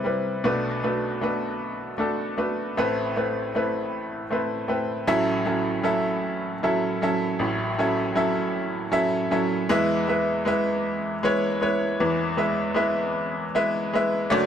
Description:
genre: folk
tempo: 52 BPM (dotted quarters)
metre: 6/8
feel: straight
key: A major from 5.1 s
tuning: A4 = 441 Hz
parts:
  - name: bright upright piano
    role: solo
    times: 0.0-14.5 s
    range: F#1 to G5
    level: -22 LUFS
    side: equal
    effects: none
room: light reverb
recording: close, detailed microphones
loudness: -22 LUFS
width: side -8 dB against mid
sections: 0.0-5.1 A section; 5.1-14.5 B section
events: none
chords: 0.4 Bm7; 2.8 Amadd9; 5.1 A6; 9.7 E

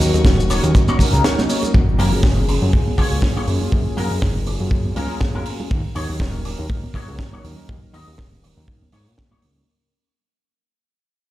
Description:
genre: nu-disco, nu disco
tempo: 121 BPM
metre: 4/4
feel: swing 56% on 16ths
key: unclear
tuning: A4 = 443 Hz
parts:
  - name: soft octave-layered synth lead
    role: melody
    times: 0.0-1.2 s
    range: F#4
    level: -25 LUFS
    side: left 3 dB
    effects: chorus, phaser, ping-pong delay
  - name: mellow synth brass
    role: accompaniment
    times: 0.0-9.7 s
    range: F#3 to A#4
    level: -27 LUFS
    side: equal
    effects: chorus, ping-pong delay
  - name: rich chamber string section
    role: sustained chords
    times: 0.0-1.7 s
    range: F#4 to C#6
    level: -36 LUFS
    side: left 2 dB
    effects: none
  - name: electric guitar with an envelope filter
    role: riff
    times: 0.0-9.6 s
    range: D#4 to A#5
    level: -28 LUFS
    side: left 3 dB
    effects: ensemble chorus, low-pass filter, ping-pong delay
  - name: fat analog bass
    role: bass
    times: 0.0-9.6 s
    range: D#1 to A#2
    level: -21 LUFS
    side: equal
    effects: sidechain pumping
  - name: tight funk drum kit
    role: drums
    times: 0.0-9.5 s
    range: hi-hat, shaker, snare drum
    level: -26 LUFS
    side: right 1 dB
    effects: none
  - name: congas, tube shaker and bongos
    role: percussion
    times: 0.0-9.6 s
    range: none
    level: -29 LUFS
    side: right 2 dB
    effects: none
  - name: kick drum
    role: drums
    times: 0.2-9.3 s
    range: none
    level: -19 LUFS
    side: equal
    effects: none
  - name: impact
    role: sound effects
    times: 1.7-3.7 s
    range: none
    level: -25 LUFS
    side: equal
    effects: none
room: light reverb, small room ambience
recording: played on a big sound system in a bare room, large studio reverb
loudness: -16 LUFS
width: side -15 dB against mid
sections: 0.0-1.7 A section; 1.7-9.7 B section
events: drop 0.0-1.7; clean electric guitar fill 0.7-1.7; break 1.2-1.7; fade-out 1.7-9.7; impact 1.7-3.7; filter sweep on clean electric guitar 1.7-9.7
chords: 0.0 D#m7; 1.7 F#maj9; 5.7 D#m7

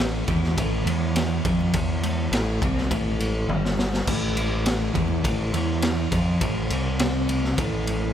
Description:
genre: psychedelic rock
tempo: 103 BPM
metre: 4/4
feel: straight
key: A minor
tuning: A4 = 440 Hz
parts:
  - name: twelve-string electric guitar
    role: riff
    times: 0.0-8.1 s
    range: G2 to F3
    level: -25 LUFS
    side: equal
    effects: rotary speaker, double-tracked left and right
  - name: gritty driven synth bass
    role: bass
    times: 0.0-8.1 s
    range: G1 to F2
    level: -27 LUFS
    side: equal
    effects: none
  - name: raw garage drum kit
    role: drums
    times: 0.0-8.0 s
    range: crash cymbal, kick drum, ride cymbal, snare drum, toms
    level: -26 LUFS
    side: equal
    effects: none
  - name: congas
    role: percussion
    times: 0.3-8.0 s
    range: none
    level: -39 LUFS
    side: left 3 dB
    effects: none
room: light reverb, studio ambience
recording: none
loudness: -21 LUFS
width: side -9 dB against mid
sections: 0.0-8.1 A section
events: drum fill 3.5-4.1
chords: 0.0 Am

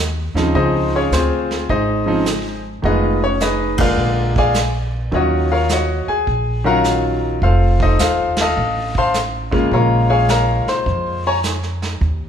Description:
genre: jazz piano trio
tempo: 105 BPM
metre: 4/4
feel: swing 67% on 8ths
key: Bb minor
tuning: A4 = 442 Hz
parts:
  - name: upright bass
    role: bass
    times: 0.0-12.3 s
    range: F1 to F2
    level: -20 LUFS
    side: right 1 dB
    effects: none
  - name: bright grand piano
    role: melody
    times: 0.4-11.4 s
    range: Db3 to Db6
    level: -17 LUFS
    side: left 2 dB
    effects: none
  - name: vintage brush drum kit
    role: drums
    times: 0.4-12.3 s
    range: brushed snare drum, hi-hat, kick drum, ride cymbal, snare drum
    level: -24 LUFS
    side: right 3 dB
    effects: none
room: moderate recital hall reverb, RT60 1.4 s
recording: recorded in a church or concert hall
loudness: -15 LUFS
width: side -8 dB against mid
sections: 0.0-12.3 A section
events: band accent 3.7, 8.3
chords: 0.0 Ab (rootless); 0.5 Dbmaj9; 2.8 Fm7b5; 4.0 Bb7; 5.1 Ebm9; 7.4 F7; 9.7 Bbm7

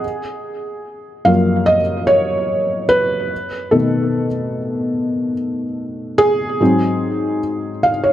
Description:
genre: R&B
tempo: 73 BPM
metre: 4/4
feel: straight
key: unclear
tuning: A4 = 440 Hz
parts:
  - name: felt-muted upright piano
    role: solo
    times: 0.0-8.1 s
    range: F#2 to E#5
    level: -15 LUFS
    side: equal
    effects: tape echo
room: light reverb, small room ambience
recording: dark, warm production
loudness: -15 LUFS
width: side -12 dB against mid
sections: 0.0-8.1 A section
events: felt piano solo 0.0-8.1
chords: 0.0 F#maj9; 3.3 B7; 6.6 G#6

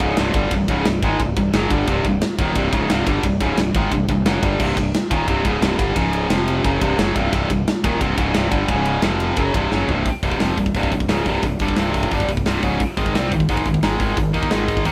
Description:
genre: heavy metal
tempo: 176 BPM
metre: 4/4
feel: straight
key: C minor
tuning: A4 = 440 Hz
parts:
  - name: tight distorted guitar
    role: riff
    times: 0.0-14.9 s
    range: C2 to Eb4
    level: -22 LUFS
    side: equal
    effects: distortion
  - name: fuzz fingered electric bass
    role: bass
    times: 0.0-14.9 s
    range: C1 to Eb2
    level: -27 LUFS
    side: equal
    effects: overdrive
  - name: tight metal drum kit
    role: drums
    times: 0.0-14.9 s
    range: crash cymbal, hi-hat, kick drum, ride cymbal, snare drum, toms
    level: -24 LUFS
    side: equal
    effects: none
room: light reverb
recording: band playing live in one room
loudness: -19 LUFS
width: mono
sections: 0.0-10.1 A section; 10.1-14.9 B section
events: drum fill 9.7-10.1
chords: 0.0 Cm; 6.0 Db5; 6.3 F5; 6.6 Cm; 8.7 Db5; 9.0 F5; 9.4 C5; 13.0 Ab5

